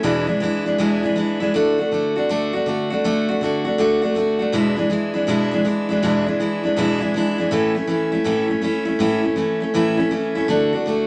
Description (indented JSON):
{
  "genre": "rock",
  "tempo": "161 BPM",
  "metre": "4/4",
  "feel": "swing 64% on 8ths",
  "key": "A major",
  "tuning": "A4 = 441 Hz",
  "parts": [
    { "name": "picked steel-string acoustic guitar", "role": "solo", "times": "0.0-11.1 s", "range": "E2 to F#4", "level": "-20 LUFS", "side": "equal", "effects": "none" }
  ],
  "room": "moderate studio reverb, RT60 0.8 s",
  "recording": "none",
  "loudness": "-20 LUFS",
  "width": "mono",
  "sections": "0.0-7.5 A section; 7.5-11.1 B section",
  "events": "none",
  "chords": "0.0 E7; 1.5 D; 4.5 E7; 7.5 A; 10.5 D"
}